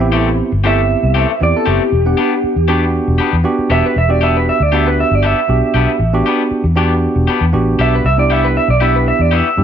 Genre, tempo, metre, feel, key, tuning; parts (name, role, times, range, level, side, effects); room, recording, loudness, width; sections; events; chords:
blues; 118 BPM; 4/4; straight; E minor; A4 = 441 Hz
electric guitar through a small old amp; melody; 0.0-9.6 s; E4 to E5; -16 LUFS; right 2 dB; plate reverb
bright tine electric piano; accompaniment; 0.0-9.6 s; B3 to F#5; -18 LUFS; right 3 dB; plate reverb
vintage muted fingered electric bass; bass; 0.0-9.6 s; E1 to G2; -15 LUFS; equal
electric guitar through a small old amp; stabs; 0.1-9.5 s; E3 to G4; -20 LUFS; left 8 dB; plate reverb
moderate studio reverb, RT60 0.7 s; -11 LUFS; side -8 dB against mid
0.0-9.6 A section
0.0 Am7; 1.9 Em7; 8.0 Cmaj7